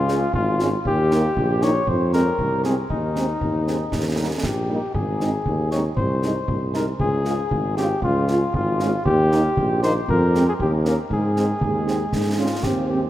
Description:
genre	military-style march for wind band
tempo	117 BPM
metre	2/4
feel	straight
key	Ab major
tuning	A4 = 440 Hz
part	mellow cornet	melody	0.0-13.0 s	Eb4 to Db5	-24 LUFS	left 2 dB	none
part	warm tuba	bass	0.0-13.1 s	Ab1 to Ab2	-22 LUFS	equal	none
part	mellow French horn section	accompaniment	0.1-13.0 s	Eb3 to F4	-28 LUFS	right 2 dB	none
part	concert snare drum and concert bass drum	drums	0.1-12.8 s	none	-28 LUFS	equal	none
part	dark euphonium	second line	11.6-13.1 s	Ab3 to Db4	-25 LUFS	right 3 dB	none
room	moderate cathedral reverb, RT60 5.1 s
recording	in a vast, echoing space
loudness	-19 LUFS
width	side -13 dB against mid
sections	0.0-13.1 A section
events	none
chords	0.0 Db; 0.9 Eb; 1.9 Fm; 2.9 Ab/Eb; 3.9 Eb; 5.0 Ab; 6.0 Ab/C; 7.0 Db; 9.1 Eb; 10.1 Fm; 10.6 Eb7; 11.1 Ab

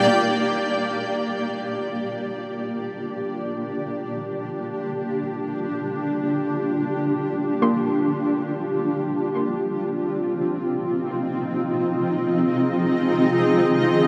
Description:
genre	ambient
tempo	free time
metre	none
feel	none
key	unclear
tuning	A4 = 439 Hz
part	granular cloud pad	sustained chords	0.0-14.1 s	Bb3 to Eb5	-24 LUFS	equal	built-in reverb
part	soft round pluck	arpeggios	0.1-10.2 s	Bb3 to C6	-31 LUFS	equal	chorus, diffuse ambient delay
room	wet huge ambient reverb, RT60 7.6 s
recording	none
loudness	-24 LUFS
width	mono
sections	0.1-14.1 A section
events	fade-in on ambient pad 0.1-14.1; fade-in on synth pluck 0.1-14.1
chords	0.1 Gm7; 9.4 Fm7

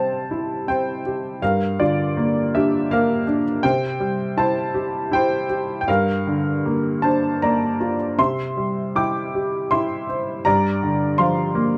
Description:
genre	classical, lyrical solo piano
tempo	80 BPM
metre	3/4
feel	rubato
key	C mixolydian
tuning	A4 = 440 Hz
part	bright upright piano	solo	0.0-11.8 s	G2 to D6	-21 LUFS	equal	none
room	light reverb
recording	dark, warm production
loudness	-21 LUFS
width	mono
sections	0.0-11.8 A section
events	none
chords	0.0 C; 1.4 Gm7; 3.6 C; 5.9 Gm7; 8.2 C; 10.5 Gm7

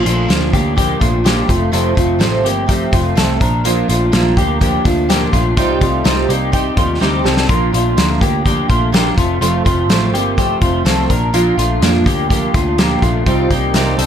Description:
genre	jangly indie pop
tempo	125 BPM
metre	4/4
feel	straight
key	Bb major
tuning	A4 = 440 Hz
part	picked steel-string acoustic guitar	accompaniment	0.0-14.1 s	F2 to D5	-18 LUFS	right 3 dB	none
part	electric guitar through a small old amp	arpeggios	0.0-14.1 s	A3 to Bb4	-17 LUFS	left 1 dB	analog chorus
part	vintage muted picked electric bass	bass	0.1-14.1 s	F1 to F2	-19 LUFS	equal	none
part	loose indie drum kit	drums	0.1-14.1 s	hi-hat, kick drum, snare drum	-17 LUFS	equal	none
room	moderate small room reverb, RT60 0.6 s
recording	none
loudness	-12 LUFS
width	side -9 dB against mid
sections	0.0-14.1 A section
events	drum fill 7.0-7.5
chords	0.0 Bb; 1.5 F; 3.4 Bb; 5.6 Cmadd9; 7.5 Bb; 9.2 F; 11.1 Bb; 13.3 Cmadd9

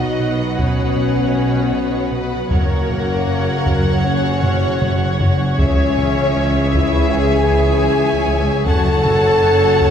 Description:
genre	cinematic, hybrid orchestral and electronic film score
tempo	78 BPM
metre	4/4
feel	straight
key	unclear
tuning	A4 = 440 Hz
part	warm symphonic violin section	melody	0.0-9.9 s	E5 to F#5	-26 LUFS	left 1 dB	none
part	warm symphonic violin section	second line	0.0-9.9 s	A#4 to A5	-25 LUFS	left 2 dB	none
part	rich chamber viola section	accompaniment	0.0-9.9 s	F#4 to C#5	-26 LUFS	left 1 dB	none
part	dark trombone section	sustained chords	0.0-9.9 s	B2 to F#3	-27 LUFS	right 2 dB	none
part	lush unison pad	sustained chords	0.0-9.9 s	E3 to D#5	-28 LUFS	equal	chorus
part	mellow French horn section	sustained chords	0.0-9.9 s	A#3 to A4	-20 LUFS	left 3 dB	none
part	rubbery square bass	riff	0.0-9.9 s	C#2 to B2	-25 LUFS	right 2 dB	none
part	mellow tuba	bass	0.0-9.9 s	F#1 to C#2	-24 LUFS	equal	none
part	rich symphonic cello section	bass	0.0-9.9 s	C#2 to B2	-25 LUFS	right 2 dB	none
part	warm symphonic double bass section	bass	0.0-9.9 s	F#1 to C#2	-23 LUFS	right 2 dB	none
part	solo taiko drums	drums	0.6-9.9 s	none	-21 LUFS	equal	none
room	wet scoring stage reverb, RT60 1.7 s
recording	heard from further back in the room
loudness	-14 LUFS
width	side -8 dB against mid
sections	0.0-9.9 A section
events	drum fill 4.4-5.6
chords	0.0 B; 2.5 F#; 5.6 C#m; 8.7 F#m

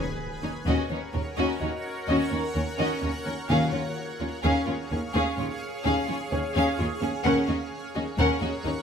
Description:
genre	cinematic, suspense film score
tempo	64 BPM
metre	4/4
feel	straight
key	Eb minor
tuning	A4 = 441 Hz
part	warm chamber violin section	melody	0.0-8.7 s	Ab4 to Gb5	-33 LUFS	left 2 dB	none
part	warm chamber violin section	second line	0.0-8.7 s	Db4 to Bb4	-32 LUFS	left 2 dB	none
part	warm studio viola section	accompaniment	0.0-8.7 s	Db4	-30 LUFS	left 1 dB	none
part	shimmering ambient pad	sustained chords	0.0-8.8 s	Ab4 to Gb5	-34 LUFS	right 1 dB	chorus, built-in reverb, phaser
part	warm chamber cello section	bass	0.0-8.7 s	Eb2	-31 LUFS	right 1 dB	none
part	timpani	percussion	0.0-4.9 s	Eb3	-32 LUFS	left 1 dB	none
part	impact	sound effects	0.0-3.5 s	none	-40 LUFS	equal	none
part	clear chamber double bass section	bass	0.7-8.7 s	Eb2	-32 LUFS	right 2 dB	none
part	dark concert grand piano	texture	1.6-8.8 s	F4 to F5	-41 LUFS	left 4 dB	none
room	moderate recital hall reverb, RT60 1.6 s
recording	none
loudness	-24 LUFS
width	side -7 dB against mid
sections	0.0-8.8 A section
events	impact 0.0-3.5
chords	0.0 Ebm7; 3.5 Db/Eb; 7.3 Ebm7

